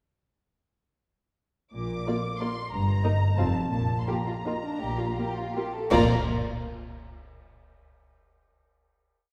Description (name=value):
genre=classical, orchestral ballroom waltz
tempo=155-198 BPM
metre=3/4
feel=rubato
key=Bb major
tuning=A4 = 440 Hz
part: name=warm studio violin section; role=melody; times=1.7-6.1 s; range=A5 to D6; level=-37 LUFS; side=equal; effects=none
part: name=rich studio cello section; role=bass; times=1.7-6.1 s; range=F2 to Bb2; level=-32 LUFS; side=equal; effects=none
part: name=rich studio double bass section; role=bass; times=1.7-6.1 s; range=F1 to Bb1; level=-34 LUFS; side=equal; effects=none
part: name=rich studio violin section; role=second line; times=2.1-6.1 s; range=D4 to Eb5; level=-35 LUFS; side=equal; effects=none
part: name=warm studio viola section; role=accompaniment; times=2.1-6.1 s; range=Bb3 to F4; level=-33 LUFS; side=equal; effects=none
part: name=cymbal swell, clash cymbals and concert bass drum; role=percussion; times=3.7-6.6 s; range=none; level=-37 LUFS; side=equal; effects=none
room=wet scoring stage reverb, RT60 1.7 s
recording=heard from further back in the room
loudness=-27 LUFS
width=mono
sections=1.7-5.9 A section; 5.9-6.9 final chord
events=band accent 5.9-6.2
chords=1.7 Bb; 2.7 Eb/G; 3.4 F; 3.7 Bb5